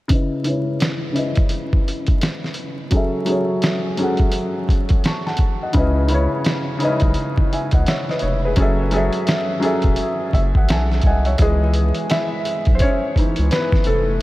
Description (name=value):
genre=lo-fi hip hop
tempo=85 BPM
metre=4/4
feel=swing 61% on 16ths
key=C# minor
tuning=A4 = 440 Hz
part: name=felt-muted upright piano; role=accompaniment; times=0.1-14.2 s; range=C#3 to C#6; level=-20 LUFS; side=equal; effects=low-pass filter
part: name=lo-fi sampler-style drum kit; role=drums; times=0.1-14.1 s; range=hi-hat, kick drum, snare drum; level=-20 LUFS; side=equal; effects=none
part: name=round analog bass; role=bass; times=5.8-14.2 s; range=E1 to C#2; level=-19 LUFS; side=equal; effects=none
room=moderate huge ambient reverb, RT60 8.2 s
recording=dreamy mix soaked in reverb, vinyl crackle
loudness=-16 LUFS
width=side -17 dB against mid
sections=0.1-11.4 A section; 11.4-14.2 B section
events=filter sweep on felt piano 0.1-11.4; felt piano fill 10.0-11.4; felt piano solo 11.4-14.2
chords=0.1 C#m9; 2.9 F#m9; 5.7 C#m9; 8.6 F#m9; 11.4 C#m9